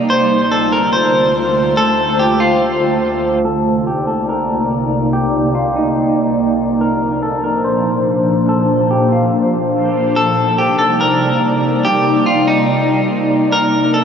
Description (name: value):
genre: hip hop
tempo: 143 BPM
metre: 4/4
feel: half-time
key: C dorian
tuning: A4 = 440 Hz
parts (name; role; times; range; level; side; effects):
- ethereal airy pad; sustained chords; 0.0-14.0 s; C2 to D5; -15 LUFS; equal; ensemble chorus, built-in reverb
- clean electric guitar; melody; 0.1-14.0 s; Eb4 to C5; -16 LUFS; left 1 dB; spring reverb, tape echo
room: wet huge ambient reverb, RT60 9.0 s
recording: dreamy mix soaked in reverb, low-pass filter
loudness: -12 LUFS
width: side -7 dB against mid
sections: 0.0-3.5 A section; 3.5-10.2 B section; 10.2-14.0 C section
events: filter sweep 3.5-10.2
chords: 0.1 Dm7; 3.5 Cm9; 6.8 Bbadd9; 10.2 Cm9; 13.5 Bbadd9